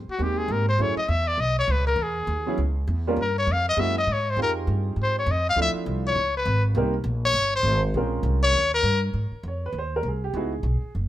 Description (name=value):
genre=jazz, small-group swing and bop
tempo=201 BPM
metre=4/4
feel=swing 60% on 8ths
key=Ab major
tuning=A4 = 442 Hz
part: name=upright bass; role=bass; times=0.0-11.1 s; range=Gb1 to Ab2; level=-25 LUFS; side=equal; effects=none
part: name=clear trumpet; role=melody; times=0.1-9.0 s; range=Gb4 to F5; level=-23 LUFS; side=left 2 dB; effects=plate reverb
part: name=warm baby grand piano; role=accompaniment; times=0.2-10.9 s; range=F3 to Db5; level=-28 LUFS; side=right 3 dB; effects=none
room=light reverb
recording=none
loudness=-21 LUFS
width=side -13 dB against mid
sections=0.0-9.1 A section; 9.1-11.1 A section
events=trumpet solo 0.0-9.1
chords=0.0 Abmaj7; 0.8 Gbm9; 1.4 Bsus2; 2.0 E6; 3.2 Eb9 (rootless); 3.8 Gb9; 4.4 Fm9; 5.6 Dm7; 6.2 Db5; 6.8 Cm7; 8.0 Bbm9; 8.6 Eb; 9.1 Ab; 10.3 Dbm11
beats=0.19 0.49 | 0.79 1.09 1.39 1.69 | 1.98 2.28 2.58 2.88 | 3.18 3.48 3.78 4.07 | 4.37 4.67 4.97 5.27 | 5.57 5.86 6.16 6.46 | 6.76 7.06 7.36 7.65 | 7.95 8.25 8.55 8.85 | 9.15 9.45 9.74 10.04 | 10.34 10.64 10.94